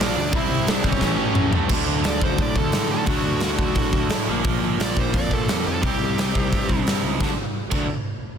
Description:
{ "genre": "punk rock", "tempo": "175 BPM", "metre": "4/4", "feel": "straight", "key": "unclear", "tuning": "A4 = 440 Hz", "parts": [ { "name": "dark smooth lead guitar", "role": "melody", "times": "0.0-6.8 s", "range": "C#4 to E5", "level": "-27 LUFS", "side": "right 2 dB", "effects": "overdrive" }, { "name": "fuzz guitar", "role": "riff", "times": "0.0-1.7 s", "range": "A2 to C4", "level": "-30 LUFS", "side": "equal", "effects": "none" }, { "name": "overdriven semi-hollow guitar", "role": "riff", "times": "0.0-7.9 s", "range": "A2 to E4", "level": "-28 LUFS", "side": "left 16 dB", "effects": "none" }, { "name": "tight distorted guitar", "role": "riff", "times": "0.0-7.9 s", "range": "A2 to D4", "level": "-27 LUFS", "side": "right 12 dB", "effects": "distortion" }, { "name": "fuzz picked electric bass", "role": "bass", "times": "0.0-7.9 s", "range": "G#1 to A2", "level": "-27 LUFS", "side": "equal", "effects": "overdrive" }, { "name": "big rock drum kit", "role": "drums", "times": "0.0-7.8 s", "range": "crash cymbal, hi-hat, kick drum, snare drum, toms", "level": "-23 LUFS", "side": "equal", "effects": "none" } ], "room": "light reverb", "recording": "dense, heavily limited modern master", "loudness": "-19 LUFS", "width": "side -7 dB against mid", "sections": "0.0-1.7 A section; 1.7-7.2 B section; 7.2-8.4 C section", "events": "drum fill 1.0-1.7; lead electric guitar solo 1.7-7.2", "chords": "0.3 C; 1.0 A; 1.7 D; 4.3 Bb; 5.8 C; 7.2 D" }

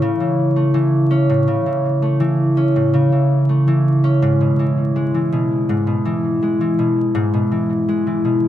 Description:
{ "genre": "folktronica", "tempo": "82 BPM", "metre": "4/4", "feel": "straight", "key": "unclear", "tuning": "A4 = 440 Hz", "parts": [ { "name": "concert harp", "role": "solo", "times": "0.0-8.5 s", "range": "G#2 to C#4", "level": "-15 LUFS", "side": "equal", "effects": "tape echo" } ], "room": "wet plate reverb, RT60 2.8 s", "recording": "dreamy mix soaked in reverb, vinyl crackle", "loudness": "-15 LUFS", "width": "side -12 dB against mid", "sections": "0.0-4.2 A section; 4.2-8.5 B section", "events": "none", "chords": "0.0 A; 4.2 E" }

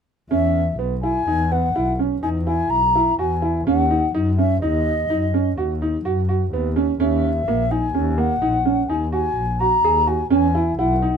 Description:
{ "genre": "contemporary instrumental, chamber music in an uneven meter", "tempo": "126 BPM", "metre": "7/4", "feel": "straight", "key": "E lydian", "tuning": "A4 = 445 Hz", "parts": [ { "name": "baroque flute", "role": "melody", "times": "0.3-11.2 s", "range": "D#5 to A#5", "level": "-21 LUFS", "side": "left 3 dB", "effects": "none" }, { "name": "warm grand piano", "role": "arpeggios", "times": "0.3-11.2 s", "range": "A#3 to G#4", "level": "-21 LUFS", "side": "right 4 dB", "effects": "none" }, { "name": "dark double bass", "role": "bass", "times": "0.3-11.2 s", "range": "A#1 to F#2", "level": "-23 LUFS", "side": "left 1 dB", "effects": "none" } ], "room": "little or no reverb", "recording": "close, detailed microphones", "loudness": "-17 LUFS", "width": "side -7 dB against mid", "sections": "0.3-11.2 A section", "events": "none", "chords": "0.3 E; 3.7 B/D# (rootless); 7.0 D#m7; 10.3 E6" }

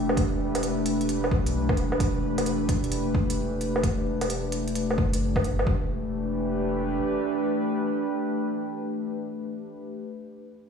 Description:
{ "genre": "future garage", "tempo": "131 BPM", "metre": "4/4", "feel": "swing 65% on 16ths", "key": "E minor", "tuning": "A4 = 440 Hz", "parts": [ { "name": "warbly tape-like pad", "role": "sustained chords", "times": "0.0-9.9 s", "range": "E3 to B4", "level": "-27 LUFS", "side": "equal", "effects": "chorus, built-in reverb, vintage 12-bit sampler grit, sidechain pumping" }, { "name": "warm sub bass", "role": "bass", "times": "0.0-7.0 s", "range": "E1 to B1", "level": "-31 LUFS", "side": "equal", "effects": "sidechain pumping" }, { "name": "electronic woodblock and hi-hat", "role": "drums", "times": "0.1-5.7 s", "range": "none", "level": "-30 LUFS", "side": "right 1 dB", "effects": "overdrive" }, { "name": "electronic kick drum", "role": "drums", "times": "0.2-5.8 s", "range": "none", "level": "-27 LUFS", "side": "equal", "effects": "overdrive" } ], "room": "light reverb", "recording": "played on a big sound system in a bare room, stone room reverb, studio ambience", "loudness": "-24 LUFS", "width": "side -6 dB against mid", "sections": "0.0-5.7 A section; 5.7-9.3 B section", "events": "none", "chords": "0.0 G/E; 5.7 Em7" }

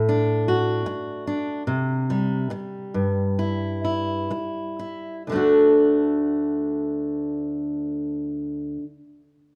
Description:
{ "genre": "folk, solo fingerstyle acoustic guitar", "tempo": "60-77 BPM", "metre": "4/4", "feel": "straight", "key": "D major", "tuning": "A4 = 440 Hz", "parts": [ { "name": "fingerpicked steel-string acoustic guitar", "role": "solo", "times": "0.0-8.9 s", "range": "D2 to F#4", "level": "-24 LUFS", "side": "equal", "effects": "none" } ], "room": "light reverb", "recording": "none", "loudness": "-24 LUFS", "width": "mono", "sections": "0.0-5.3 A section; 5.3-9.3 B section", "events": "slowing down 0.0-5.3", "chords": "0.0 D; 1.7 C; 5.3 D" }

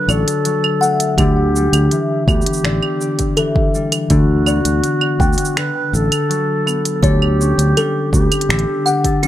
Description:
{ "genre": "folktronica", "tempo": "82 BPM", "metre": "4/4", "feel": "straight", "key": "unclear", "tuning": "A4 = 439 Hz", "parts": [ { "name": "mellow hollow baroque flute", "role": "melody", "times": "0.0-9.3 s", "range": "F#4 to B4", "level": "-20 LUFS", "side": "right 1 dB", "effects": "vintage 12-bit sampler grit, tape echo" }, { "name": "concert harp", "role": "arpeggios", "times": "0.0-9.3 s", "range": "D3 to A4", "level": "-19 LUFS", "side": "left 2 dB", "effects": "none" }, { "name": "music box", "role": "second line", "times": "0.1-9.3 s", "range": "C#4 to G5", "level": "-23 LUFS", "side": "left 3 dB", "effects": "tape echo" }, { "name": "fingered electric bass", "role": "bass", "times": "0.1-8.6 s", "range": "A1 to D2", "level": "-16 LUFS", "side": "equal", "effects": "tube saturation" }, { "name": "organic electronic drum kit", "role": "drums", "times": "0.1-9.3 s", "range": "claves, finger snaps, hi-hat, shaker", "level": "-20 LUFS", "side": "right 3 dB", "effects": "none" }, { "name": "electronic kick drum", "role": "drums", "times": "1.2-9.2 s", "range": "none", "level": "-18 LUFS", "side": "equal", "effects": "none" } ], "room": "studio ambience", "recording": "none", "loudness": "-13 LUFS", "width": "side -12 dB against mid", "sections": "0.0-9.3 A section", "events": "none", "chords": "0.0 D; 1.2 Em7/D; 4.1 Gmaj7/D; 7.0 A9/D" }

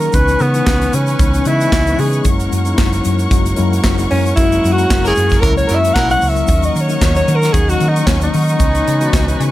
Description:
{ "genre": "disco", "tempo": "114 BPM", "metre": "4/4", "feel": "swing 56% on 16ths", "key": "unclear", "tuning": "A4 = 438 Hz", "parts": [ { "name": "warm alto saxophone", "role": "melody", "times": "0.0-9.5 s", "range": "B3 to F#5", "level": "-17 LUFS", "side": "equal", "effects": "none" }, { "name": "mellow tine electric piano", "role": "accompaniment", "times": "0.0-9.5 s", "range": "D#3 to D#5", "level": "-20 LUFS", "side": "left 4 dB", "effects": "medium stereo tremolo" }, { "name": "rich studio string section", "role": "sustained chords", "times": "0.0-9.5 s", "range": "A#4 to C#6", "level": "-24 LUFS", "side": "left 1 dB", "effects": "none" }, { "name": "hollow-body short-scale fingered electric bass", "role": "bass", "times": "0.0-9.5 s", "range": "F#1 to D#3", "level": "-17 LUFS", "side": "equal", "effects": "none" }, { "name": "modern studio drum kit", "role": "drums", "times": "0.0-9.5 s", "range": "handclaps, hi-hat, kick drum, snare drum", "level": "-17 LUFS", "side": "equal", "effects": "gated reverb" }, { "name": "tube shaker", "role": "percussion", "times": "0.0-9.5 s", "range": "none", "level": "-34 LUFS", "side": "right 8 dB", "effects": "none" }, { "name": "clear horn section", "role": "stabs", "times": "5.0-6.1 s", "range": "F#3 to A#4", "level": "-23 LUFS", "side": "right 1 dB", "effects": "none" } ], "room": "small room ambience", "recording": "none", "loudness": "-12 LUFS", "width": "side -15 dB against mid", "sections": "0.0-9.5 A section", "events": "alto saxophone solo 0.0-9.5; band accent 4.4-6.5", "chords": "0.1 C#m7; 2.3 F#7; 6.5 D#m7; 8.6 C#m7" }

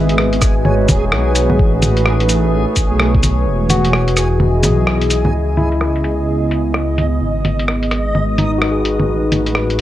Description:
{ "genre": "future garage", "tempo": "128 BPM", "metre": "4/4", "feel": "swing 62% on 16ths", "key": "C# minor", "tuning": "A4 = 440 Hz", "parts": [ { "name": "barky tine electric piano", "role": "accompaniment", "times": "0.0-9.8 s", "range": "D#4 to E5", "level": "-22 LUFS", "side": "left 2 dB", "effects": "medium stereo tremolo, sidechain pumping, tape echo" }, { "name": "warbly tape-like pad", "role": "sustained chords", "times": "0.0-9.8 s", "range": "C#3 to D#5", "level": "-20 LUFS", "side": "right 1 dB", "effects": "chorus, built-in reverb, sidechain pumping" }, { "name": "dark detuned saw bass", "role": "bass", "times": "0.0-9.8 s", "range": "D#1 to C#2", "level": "-17 LUFS", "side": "equal", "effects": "sidechain pumping" }, { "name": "backwards swelling texture", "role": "texture", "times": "0.0-9.8 s", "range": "G#4 to D#5", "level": "-25 LUFS", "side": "left 1 dB", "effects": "built-in reverb" }, { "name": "lo-fi sampler-style drum kit", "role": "drums", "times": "0.1-9.8 s", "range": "bongos, cabasa, hi-hat, rim click", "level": "-18 LUFS", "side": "equal", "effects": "low-pass filter on hats, low-pass filter on perc, low-pass filter on snare" }, { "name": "electronic kick drum", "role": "drums", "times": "0.4-3.2 s", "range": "none", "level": "-15 LUFS", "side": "equal", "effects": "none" } ], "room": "light reverb", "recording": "cassette tape", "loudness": "-13 LUFS", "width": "side -13 dB against mid", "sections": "0.0-5.3 A section; 5.3-9.8 B section", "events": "kick drops out 3.5-5.3; band accent 4.9; filter sweep on drum 5.3-9.8", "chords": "0.0 G#m7; 1.6 A69; 3.5 Emaj7; 5.3 C#m9; 7.2 G#m7; 9.1 Asus2" }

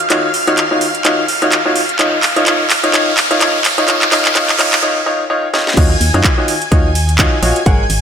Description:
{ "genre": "piano house", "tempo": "127 BPM", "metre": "4/4", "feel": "swing 57% on 16ths", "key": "Eb minor", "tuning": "A4 = 438 Hz", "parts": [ { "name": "string machine, violins", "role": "sustained chords", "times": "0.0-8.0 s", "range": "F5 to Ab6", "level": "-20 LUFS", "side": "equal", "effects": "ensemble chorus, sidechain pumping" }, { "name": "house drum kit", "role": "drums", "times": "0.0-8.0 s", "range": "crash cymbal, handclaps, hi-hat, ride cymbal, snare drum", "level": "-16 LUFS", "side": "right 1 dB", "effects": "none" }, { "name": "riser", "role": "sound effects", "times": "0.0-4.8 s", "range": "none", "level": "-20 LUFS", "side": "equal", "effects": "none" }, { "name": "clear upright piano", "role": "riff", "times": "0.1-7.8 s", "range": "Eb3 to Gb5", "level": "-15 LUFS", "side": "left 1 dB", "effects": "sidechain pumping, tape echo" }, { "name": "organ-like FM bass", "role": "bass", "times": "5.8-8.0 s", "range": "Ab1 to Gb2", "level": "-15 LUFS", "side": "equal", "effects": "sidechain pumping" }, { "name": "electronic kick drum", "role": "drums", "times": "5.8-7.8 s", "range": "none", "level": "-13 LUFS", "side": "equal", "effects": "none" } ], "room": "moderate lush hall reverb, RT60 1.8 s, digital ambience", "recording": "high-pass filter", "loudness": "-10 LUFS", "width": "side -7 dB against mid", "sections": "0.0-5.8 A section; 5.8-8.0 B section", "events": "build-up 0.0-5.8; drum fill 0.0-4.8, 5.5; riser 0.0-4.8; break 4.8-5.8; drop 5.8-8.0", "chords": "0.0 Ebm9; 1.8 Dbadd9/Eb; 5.8 Ebm9" }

